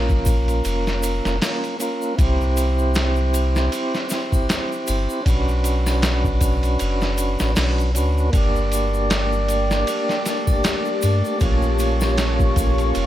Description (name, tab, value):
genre	trip hop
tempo	78 BPM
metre	4/4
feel	swing 57% on 16ths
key	unclear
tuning	A4 = 440 Hz
part	tonewheel organ	accompaniment	0.0-13.1 s	Bb3 to D5	-23 LUFS	right 1 dB	stopped rotary speaker, tremolo, tape echo
part	soft dub sub bass	bass	0.0-13.1 s	F1 to G2	-21 LUFS	equal	none
part	trip hop sampler-style drum kit	drums	0.1-13.1 s	hi-hat, kick drum, ride cymbal, snare drum	-23 LUFS	equal	none
part	egg shaker and triangle	percussion	0.1-13.1 s	none	-35 LUFS	left 3 dB	none
part	dark analog pad	sustained chords	9.4-13.1 s	G4 to D6	-28 LUFS	left 3 dB	chorus, vintage 12-bit sampler grit
part	wind-like tuned noise texture	texture	9.9-13.1 s	A3 to A5	-33 LUFS	left 1 dB	built-in reverb
room	light reverb, digital ambience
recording	none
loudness	-18 LUFS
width	side -13 dB against mid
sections	0.0-13.1 A section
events	none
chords	0.0 Bbm; 2.2 C; 5.3 Bmadd9; 8.3 Gm; 11.4 Bbm